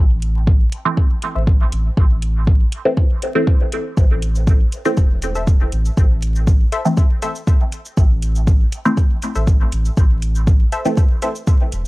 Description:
dub techno; 120 BPM; 4/4; straight; A minor; A4 = 440 Hz
soft dub sub bass; bass; 0.0-11.9 s; E1 to A1; -19 LUFS; equal; tube saturation, sidechain pumping
electronic hi-hat and cabasa; drums; 0.2-11.9 s; -34 LUFS; equal
electronic kick drum; drums; 0.5-11.6 s; -14 LUFS; equal
filtered dub chord stab; stabs; 0.9-11.0 s; E3 to C4; -21 LUFS; equal; phaser, dub echo
filtered dub chord stab; riff; 1.4, 5.4-11.3 s; A4 to E5; -26 LUFS; left 2 dB; chorus, sidechain pumping, dub echo
digital ambience; dry, gritty hardware recording, vinyl crackle; -14 LUFS; side -20 dB against mid
0.0-11.9 A section
0.0 Am

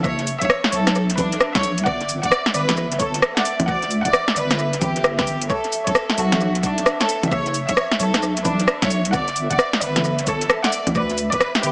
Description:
UK garage, two-step garage; 132 BPM; 4/4; swing 64% on 16ths; B minor; A4 = 440 Hz
bright studio violin section; melody; 0.0-11.7 s; D4 to F#5; -23 LUFS; equal; tape echo
airy breathy pad; sustained chords; 0.0-11.7 s; E5; -30 LUFS; right 1 dB; chorus, sidechain pumping
deep soft wobble bass; bass; 0.0-11.7 s; F#1 to D2; -24 LUFS; equal; chorus, tube saturation
electronic kick drum; drums; 0.0-11.4 s; -27 LUFS; equal
garage drum kit; drums; 0.0-11.7 s; cabasa, congas, hi-hat, rim click, snare drum; -20 LUFS; equal; dub echo
light reverb; echo-heavy mix, small speaker sound; -17 LUFS; side -27 dB against mid
0.0-11.7 A section
0.0 Bsus4; 1.9 G; 5.5 B9sus4; 9.1 G

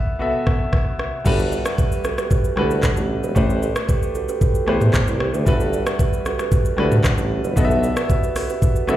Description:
afrobeats; 114 BPM; 4/4; straight; G major; A4 = 440 Hz
warm concert grand piano; accompaniment; 0.0-9.0 s; G3 to E5; -24 LUFS; left 1 dB
afro-pop drum kit; drums; 0.5-9.0 s; crash cymbal, handclaps, hi-hat, kick drum, rim click, shaker, toms; -19 LUFS; equal
kalimba; riff; 1.3-9.0 s; E4 to E5; -26 LUFS; right 6 dB; digital delay
warm tuba; bass; 1.3-9.0 s; E1 to E2; -22 LUFS; equal
digital ambience; played on a big sound system in a bare room, large studio reverb; -17 LUFS; side -13 dB against mid
0.0-1.3 A section; 1.3-9.0 B section
0.0 B7sus4; 1.3 Gmaj9; 3.4 Am9; 5.5 Gmaj9

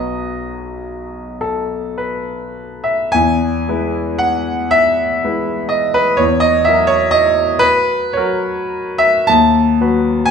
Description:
classical, romantic nocturne for solo piano; 33-44 BPM (dotted quarters); 6/8; rubato; E major; A4 = 438 Hz
clear concert grand piano; solo; 0.0-10.3 s; B1 to A5; -13 LUFS; equal
moderate recital hall reverb, RT60 1.4 s; minimal, uncompressed stereo recording; -13 LUFS; side -6 dB against mid
0.0-3.1 A section; 3.1-10.3 B section
0.0 B; 3.1 E; 6.2 F#7/E; 9.3 B7/D#

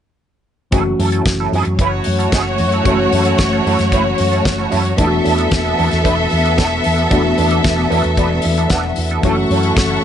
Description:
disco; 113 BPM; 4/4; straight; A4 = 440 Hz
clean electric guitar; accompaniment; 0.7-10.0 s; F#3 to B4; -22 LUFS; right 6 dB; wah, wide subtle chorus
tine electric piano; accompaniment; 0.7-10.0 s; E3 to F#5; -20 LUFS; left 3 dB; medium stereo tremolo
hollow-body short-scale fingered electric bass; bass; 0.7-10.0 s; E1 to F#2; -19 LUFS; equal
damped 70s drum kit; drums; 0.7-9.9 s; hi-hat, kick drum, snare drum; -19 LUFS; equal
clear studio string section; second line; 1.8-9.2 s; A3 to E5; -18 LUFS; left 1 dB
clear studio string section; sustained chords; 9.2-10.0 s; A4 to C#6; -21 LUFS; left 2 dB
light reverb, studio ambience; nothing above 10.9 kHz; -13 LUFS; side -9 dB against mid
0.7-10.0 A section
tine electric piano fill 7.6-9.2
0.7 F#m7; 5.0 E9sus4; 9.2 F#m7

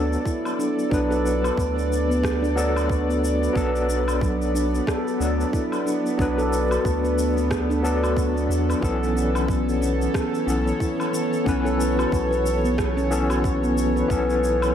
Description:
organic downtempo; 91 BPM; 4/4; swing 57% on 16ths; B minor; A4 = 440 Hz
overdriven tine electric piano; accompaniment; 0.0-14.7 s; E3 to B4; -26 LUFS; left 2 dB; fast tremolo, sidechain pumping, analog delay
bowed-like drone; sustained chords; 0.0-14.7 s; B3 to D5; -28 LUFS; right 1 dB; built-in reverb, sidechain pumping
handpan; arpeggios; 0.0-14.7 s; F#3 to B4; -26 LUFS; right 1 dB; analog delay
round analog bass; bass; 0.0-14.7 s; B1 to E2; -25 LUFS; equal
electronic shaker, woodblock and rim click; drums; 0.1-14.7 s; -33 LUFS; left 1 dB; overdrive
electronic kick drum; drums; 0.3-14.3 s; -26 LUFS; equal; overdrive
moderate plate reverb, RT60 1.4 s, digital ambience; dreamy mix soaked in reverb; -20 LUFS; side -9 dB against mid
0.0-14.7 A section
0.0 Bm7; 8.8 Aadd9/B

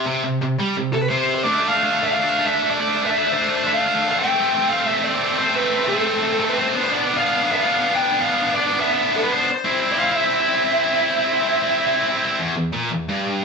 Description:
metal; 175 BPM; 4/4; straight; A4 = 440 Hz
tight distorted guitar; riff; 0.0-13.4 s; E2 to E4; -19 LUFS; equal; distortion
bluesy overdriven lead guitar; melody; 0.9-12.0 s; A4 to G5; -20 LUFS; equal; distortion
moderate large studio reverb, RT60 1.1 s; band playing live in one room, nothing above 8.0 kHz; -17 LUFS; side -4 dB against mid
0.0-1.4 A section; 1.4-12.4 B section; 12.4-13.4 C section
0.0 C5; 1.4 Dm; 4.2 Am7; 6.7 Bdim; 9.7 C; 12.4 Em

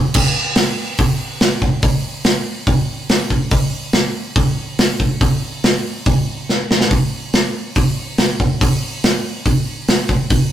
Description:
rock; 142 BPM; 4/4; straight
big rock drum kit; drums; 0.1-10.4 s; crash cymbal, hi-hat, kick drum, snare drum; -14 LUFS; equal
light reverb; rough rehearsal-room recording, tube saturation; -15 LUFS; side -11 dB against mid
0.1-10.5 A section
drum fill 6.5-6.9

